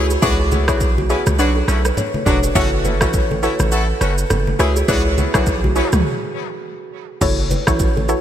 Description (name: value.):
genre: afrobeats.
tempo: 103 BPM.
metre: 4/4.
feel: swing 58% on 16ths.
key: F# minor.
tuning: A4 = 441 Hz.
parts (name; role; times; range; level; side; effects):
clear horn section; second line; 0.0-5.9 s; F#3 to A4; -24 LUFS; left 2 dB; ping-pong delay.
soft round pluck; accompaniment; 0.0-8.2 s; D4 to C#5; -22 LUFS; left 1 dB; chorus.
kalimba; riff; 0.0-8.2 s; F#4 to C#5; -24 LUFS; right 4 dB; ping-pong delay.
hard-hitting 808-style bass; bass; 0.0-8.1 s; E1 to C#2; -19 LUFS; equal; none.
deep house drum kit; drums; 0.1-8.2 s; crash cymbal, kick drum, rim click, shaker, toms; -21 LUFS; equal; overdrive, gated reverb.
congas; percussion; 0.2-8.1 s; none; -27 LUFS; left 2 dB; none.
room: light reverb.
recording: bright 1980s-style digital production.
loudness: -15 LUFS.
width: side -10 dB against mid.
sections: 0.0-7.2 A section.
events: break 6.1-7.2.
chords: 0.0 C#m7; 1.4 Bmadd9; 2.6 F#m7; 4.6 C#m7; 6.1 N.C.; 7.2 F#m7.